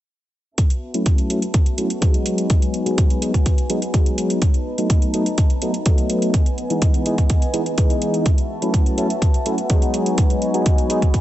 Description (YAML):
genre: filtered disco house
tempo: 125 BPM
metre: 4/4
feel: straight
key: unclear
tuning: A4 = 440 Hz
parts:
  - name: warm symphonic violin section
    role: sustained chords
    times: 0.6-11.2 s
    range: B3 to A5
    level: -28 LUFS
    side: equal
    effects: sidechain pumping, low-pass filter
  - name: electronic hi-hat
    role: drums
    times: 0.6-11.2 s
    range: none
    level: -29 LUFS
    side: right 2 dB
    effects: sidechain pumping on hats
  - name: electronic kick drum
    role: drums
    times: 0.6-11.2 s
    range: none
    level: -16 LUFS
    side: equal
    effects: none
  - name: barky tine electric piano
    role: accompaniment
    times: 0.9-11.0 s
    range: E3 to E4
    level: -22 LUFS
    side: equal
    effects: phaser, sidechain pumping, low-pass filter
room: light reverb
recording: nothing above 8.0 kHz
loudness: -16 LUFS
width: side -14 dB against mid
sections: 0.6-11.2 A section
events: filter sweep 0.6-11.2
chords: 0.6 F#m7; 2.3 G#m7; 4.4 B7; 6.3 Emaj7; 8.3 F#m7; 9.9 G#m7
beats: | 0.58 1.06 1.54 2.02 | 2.50 2.98 3.46 3.94 | 4.42 4.90 5.38 5.86 | 6.34 6.82 7.30 7.78 | 8.26 8.74 9.22 9.70 | 10.18 10.66 11.14